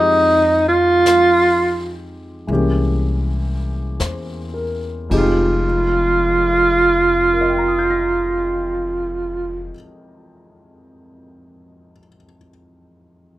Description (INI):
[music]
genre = jazz ballad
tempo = 35-45 BPM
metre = 4/4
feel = swing 69% on 8ths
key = F minor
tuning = A4 = 440 Hz
[part]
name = breathy tenor saxophone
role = melody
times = 0.0-9.7 s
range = Eb4 to F4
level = -14 LUFS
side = right 1 dB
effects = plate reverb
[part]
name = warm concert grand piano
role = accompaniment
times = 0.0-13.4 s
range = F2 to Bb6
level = -24 LUFS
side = left 1 dB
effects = plate reverb
[part]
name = upright bass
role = bass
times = 0.0-9.7 s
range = F1 to F2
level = -24 LUFS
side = left 1 dB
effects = none
[part]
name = vintage brush drum kit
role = drums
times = 1.1-5.4 s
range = brushed snare drum, hi-hat, kick drum, ride cymbal, snare drum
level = -30 LUFS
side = left 1 dB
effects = none
[sound]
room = light reverb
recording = rough home demo mix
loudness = -15 LUFS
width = side -15 dB against mid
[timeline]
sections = 0.0-5.6 A section; 5.6-12.4 B section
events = slowing down 0.0-5.6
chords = 0.0 Fm9; 2.5 C7b9b13; 4.8 Fm9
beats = 1.07 2.49 4.01 | 5.64 7.34 9.03 10.72